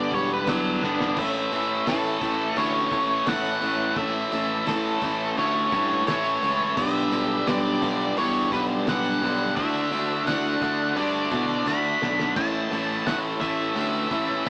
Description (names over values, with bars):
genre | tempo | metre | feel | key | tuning
classic rock | 86 BPM | 4/4 | straight | A mixolydian | A4 = 440 Hz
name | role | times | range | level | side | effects
octave-fuzz lead guitar | melody | 0.0-14.5 s | A4 to B5 | -29 LUFS | equal | distortion
tonewheel organ | sustained chords | 0.0-14.5 s | A3 to D5 | -42 LUFS | equal | none
overdriven electric guitar | riff | 0.0-14.5 s | G2 to D4 | -30 LUFS | equal | none
overdriven semi-hollow guitar | riff | 0.0-14.5 s | G2 to B4 | -33 LUFS | equal | none
modern bright picked electric bass | bass | 0.0-14.5 s | E1 to B2 | -34 LUFS | equal | none
dark upright piano | accompaniment | 0.1-14.5 s | C#4 to E5 | -39 LUFS | equal | none
damped 70s drum kit | drums | 0.1-14.5 s | crash cymbal, hi-hat, kick drum, snare drum, splash cymbal | -37 LUFS | equal | none
tambourine | percussion | 0.5-14.5 s | none | -50 LUFS | equal | none
room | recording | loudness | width
moderate studio reverb, RT60 0.5 s | band playing live in one room, small speaker sound | -24 LUFS | mono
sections
0.0-1.2 A section; 1.2-14.5 B section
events
lead electric guitar solo 0.0-1.2; drum fill 0.8-1.2, 11.7-12.4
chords
0.0 G; 1.2 A; 6.8 G/B; 9.6 Dadd9; 12.4 A